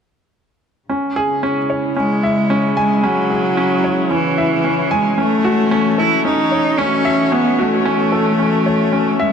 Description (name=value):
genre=electronica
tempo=112 BPM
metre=4/4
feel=straight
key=C# minor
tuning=A4 = 440 Hz
part: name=dark chamber string section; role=sustained chords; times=0.9-9.3 s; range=C#3 to C#5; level=-23 LUFS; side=left 1 dB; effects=none
part: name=clear baby grand piano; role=riff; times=0.9-9.3 s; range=C#4 to G#5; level=-18 LUFS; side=equal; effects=tape echo
part: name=rich cello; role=melody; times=2.0-9.3 s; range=E3 to E4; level=-16 LUFS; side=equal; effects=tape echo
room=moderate huge ambient reverb, RT60 9.2 s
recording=dark, warm production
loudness=-14 LUFS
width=side -7 dB against mid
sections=0.9-9.3 A section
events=none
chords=0.9 C#m; 5.2 F#m7